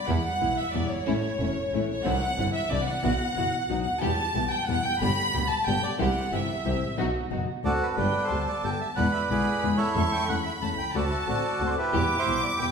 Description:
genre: tango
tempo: 182 BPM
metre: 3/4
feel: rubato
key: E minor, G major from 8.0 s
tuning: A4 = 439 Hz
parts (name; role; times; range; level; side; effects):
- warm studio violin section; second line; 0.0-12.7 s; C#5 to D6; -29 LUFS; equal; none
- nylon-string guitar; accompaniment; 0.1-12.7 s; B2 to G4; -30 LUFS; left 5 dB; none
- dark symphonic string section; stabs; 0.1-7.8, 11.9-12.7 s; G3 to G4; -34 LUFS; right 4 dB; none
- clear double bass; bass; 0.1-12.7 s; E1 to E2; -31 LUFS; right 2 dB; none
- bandoneon; melody; 7.6-12.7 s; D4 to A5; -27 LUFS; right 3 dB; none
room: wet recital hall reverb, RT60 1.6 s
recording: recorded in a church or concert hall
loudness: -24 LUFS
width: side -6 dB against mid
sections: 0.1-8.0 A section; 8.0-12.7 B section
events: violin section solo 0.1-8.0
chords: 0.1 Em; 1.1 A; 2.0 Cadd9; 3.0 Bsus4; 3.7 B; 4.0 Em; 5.0 G; 6.0 C; 7.0 B; 7.6 D7; 8.0 Gadd9; 9.0 E7; 10.0 A/E; 10.9 D7; 11.9 Em

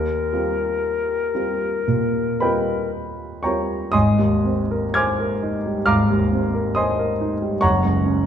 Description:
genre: classical, impressionist duo for flute and grand piano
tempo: 53-71 BPM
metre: 4/4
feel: rubato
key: unclear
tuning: A4 = 440 Hz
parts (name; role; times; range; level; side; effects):
- silver concert flute; melody; 0.0-2.9 s; Bb4; -24 LUFS; left 7 dB; none
- clear grand piano; accompaniment; 0.0-8.3 s; Gb1 to Ab6; -19 LUFS; right 1 dB; none
room: wet recital hall reverb, RT60 1.5 s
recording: dark, warm production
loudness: -18 LUFS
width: side -9 dB against mid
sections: 0.0-3.9 A section; 3.9-8.3 B section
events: none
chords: 0.0 Eb13; 3.9 Abmaj9; 7.6 Gb

